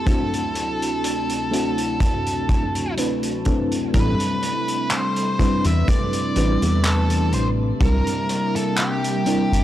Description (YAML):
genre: vaporwave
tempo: 62 BPM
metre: 4/4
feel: swing 53% on 16ths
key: A minor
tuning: A4 = 440 Hz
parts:
  - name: octave-fuzz lead guitar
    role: melody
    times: 0.0-9.6 s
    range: G4 to E5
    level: -26 LUFS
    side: equal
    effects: distortion, tape echo
  - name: mellow FM electric piano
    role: accompaniment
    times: 0.0-9.6 s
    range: G3 to B4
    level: -24 LUFS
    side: equal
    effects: tremolo, analog chorus, analog delay
  - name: warbly tape-like pad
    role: sustained chords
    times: 0.0-9.6 s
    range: D2 to E5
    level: -29 LUFS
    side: equal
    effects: chorus, built-in reverb
  - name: kick drum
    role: drums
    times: 0.1-8.0 s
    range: none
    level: -22 LUFS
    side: equal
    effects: none
  - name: vintage drum kit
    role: drums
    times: 0.1-9.6 s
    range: handclaps, hi-hat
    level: -29 LUFS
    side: equal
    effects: none
  - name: chorused synth bass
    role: bass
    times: 3.9-9.6 s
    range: G1 to E2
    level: -19 LUFS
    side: equal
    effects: tube saturation
room: small room ambience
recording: dry, gritty hardware recording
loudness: -18 LUFS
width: side -12 dB against mid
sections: 0.0-3.9 A section; 3.9-9.6 B section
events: filter sweep on ambient pad 0.0-3.9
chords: 0.1 D9; 3.9 Am11; 7.8 C7